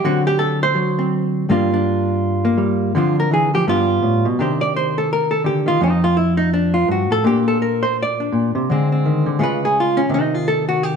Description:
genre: solo jazz.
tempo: 168 BPM.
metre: 4/4.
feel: swing 63% on 8ths, rubato.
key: G minor.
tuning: A4 = 438 Hz.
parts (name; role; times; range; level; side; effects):
hollow-body jazz guitar; solo; 0.0-11.0 s; F2 to D5; -15 LUFS; equal; none.
room: wet stone room reverb, RT60 1.2 s.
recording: band playing live in one room, nothing above 10.5 kHz.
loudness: -15 LUFS.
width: side -6 dB against mid.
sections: 0.0-1.5 A section; 1.5-11.0 A section.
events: hollow-body jazz guitar solo 0.0-11.0.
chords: 0.0 D7; 1.5 Gm7; 3.0 Dm9b5; 3.7 G7; 4.4 Cmadd9; 5.8 F; 7.2 Bbadd9; 8.7 Cmadd9/D; 9.4 C#; 10.1 Cm.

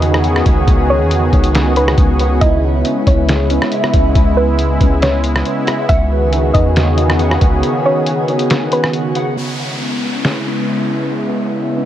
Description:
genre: hip hop, atmospheric cloud-rap.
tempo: 138 BPM.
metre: 4/4.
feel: half-time.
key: C# minor.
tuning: A4 = 439 Hz.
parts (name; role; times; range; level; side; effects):
soft round pluck; melody; 0.0-9.3 s; B4 to E5; -21 LUFS; equal; chorus, tape echo.
sweeping resonant pad; sustained chords; 0.0-11.9 s; C#3 to G#4; -17 LUFS; equal; chorus, sidechain pumping, low-pass filter.
mellow electric guitar; arpeggios; 0.0-11.9 s; C#4 to F#5; -23 LUFS; equal; ensemble chorus, low-pass filter, tape echo.
soft 808-style bass; bass; 0.0-7.6 s; C#2 to E2; -15 LUFS; equal; none.
lo-fi sampler-style drum kit; drums; 0.0-10.3 s; hi-hat, kick drum, rim click, snare drum; -16 LUFS; equal; vintage 12-bit sampler grit.
downlifter; sound effects; 9.4-11.9 s; none; -24 LUFS; equal; none.
room: light reverb.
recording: none.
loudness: -12 LUFS.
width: side -12 dB against mid.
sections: 0.0-9.4 A section; 9.4-11.9 B section.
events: break 7.6-9.4; filter sweep 9.4-11.9.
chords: 0.0 Emaj9/C#; 2.4 C#m7; 5.9 Emaj9/C#; 9.4 C#m7.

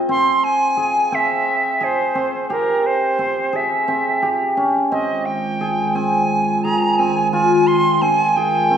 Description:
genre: contemporary instrumental, chamber music in an uneven meter.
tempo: 174 BPM (eighths).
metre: 7/8.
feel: straight.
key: F minor.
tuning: A4 = 444 Hz.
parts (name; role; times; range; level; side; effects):
cimbalom; arpeggios; 0.0-8.8 s; C4 to Ab4; -19 LUFS; left 1 dB; none.
bright reedy silver concert flute; melody; 0.1-8.8 s; Bb4 to C6; -18 LUFS; right 2 dB; none.
warbly tape-like pad; sustained chords; 5.1-8.8 s; Eb3 to F4; -22 LUFS; right 2 dB; chorus, built-in reverb.
room: wet recital hall reverb, RT60 1.6 s.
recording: heard from further back in the room.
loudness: -16 LUFS.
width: side -8 dB against mid.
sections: 0.0-8.8 A section.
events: none.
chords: 0.1 C; 4.9 Fm7.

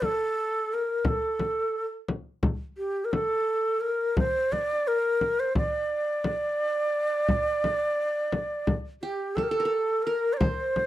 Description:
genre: Turkish makam ensemble.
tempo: 173 BPM (eighths).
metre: 9/8.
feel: straight.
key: unclear.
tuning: A4 = 444 Hz.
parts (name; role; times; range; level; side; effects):
breathy bright ney; melody; 0.0-10.9 s; G4 to D5; -26 LUFS; equal; slapback echo.
frame drum; percussion; 0.0-10.9 s; none; -27 LUFS; left 2 dB; none.
qanun; second line; 9.0-10.9 s; G4 to C5; -31 LUFS; right 2 dB; none.
room: little or no reverb.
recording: dry, close 1970s-style studio recording.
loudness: -25 LUFS.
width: side -14 dB against mid.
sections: 0.0-10.4 A section.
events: none.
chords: none.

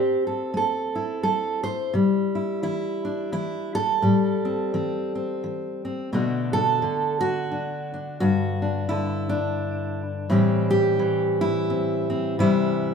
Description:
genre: folk, solo fingerstyle acoustic guitar.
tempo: 86 BPM.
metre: 3/4.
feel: swing 59% on 8ths.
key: A dorian.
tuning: A4 = 440 Hz.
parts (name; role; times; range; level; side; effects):
fingerpicked steel-string acoustic guitar; solo; 0.0-12.9 s; G2 to C5; -22 LUFS; equal; none.
room: wet large studio reverb, RT60 1.2 s.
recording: band playing live in one room.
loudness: -22 LUFS.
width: side -6 dB against mid.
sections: 0.0-6.1 A section; 6.1-12.9 B section.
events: none.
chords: 0.0 Am; 1.9 Cadd9; 4.0 Am7; 6.1 Bm7; 8.2 G5; 10.3 Am7; 12.4 Cadd9.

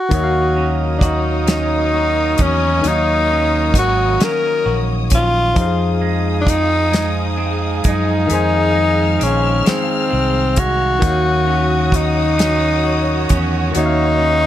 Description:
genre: slow six-eight R&B.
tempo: 44 BPM (dotted quarters).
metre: 6/8.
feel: straight.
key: Eb dorian.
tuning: A4 = 440 Hz.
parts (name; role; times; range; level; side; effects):
breathy tenor saxophone; melody; 0.0-14.5 s; C4 to Bb4; -18 LUFS; left 1 dB; slapback echo.
semi-hollow electric guitar; second line; 0.1-14.5 s; F2 to Gb4; -27 LUFS; right 6 dB; none.
barky tine electric piano; accompaniment; 0.1-14.5 s; Eb3 to Ab5; -23 LUFS; left 5 dB; overdrive.
warm studio string section; sustained chords; 0.1-14.5 s; Gb4 to F6; -27 LUFS; left 2 dB; none.
warm horn section; stabs; 0.1-14.5 s; Eb3 to Bb4; -26 LUFS; right 5 dB; none.
fingered electric bass; bass; 0.1-14.5 s; Ab1 to Gb2; -19 LUFS; right 1 dB; none.
damped 70s drum kit; drums; 0.1-14.0 s; hi-hat, kick drum, snare drum; -16 LUFS; equal; none.
room: little or no reverb.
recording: none.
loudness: -14 LUFS.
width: side -12 dB against mid.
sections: 0.1-14.5 A section.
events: none.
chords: 0.1 Ebm7; 5.6 Fm7; 11.0 Ebm7.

